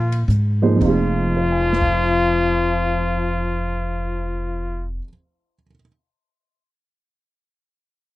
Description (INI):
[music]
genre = modal jazz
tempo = 109 BPM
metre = 3/4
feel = swing 66% on 8ths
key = F minor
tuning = A4 = 435 Hz
[part]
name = trumpet with plunger mute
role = melody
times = 0.0-4.9 s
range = F4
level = -23 LUFS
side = equal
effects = none
[part]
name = growling trombone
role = second line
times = 0.0-4.9 s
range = F3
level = -25 LUFS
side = left 5 dB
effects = none
[part]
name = upright bass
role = bass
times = 0.0-5.0 s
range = F1 to Bb2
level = -22 LUFS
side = equal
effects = none
[part]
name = open jazz drum kit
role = drums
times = 0.1-1.9 s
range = crash cymbal, hi-hat, kick drum, ride cymbal, snare drum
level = -28 LUFS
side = equal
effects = none
[part]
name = dark baby grand piano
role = accompaniment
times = 0.6-5.9 s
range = F2 to C7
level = -23 LUFS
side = right 4 dB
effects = none
[sound]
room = little or no reverb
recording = dry, close 1970s-style studio recording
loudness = -17 LUFS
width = side -16 dB against mid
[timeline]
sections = 0.8-4.1 A section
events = none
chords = 0.0 Bb7sus2; 0.8 Fm7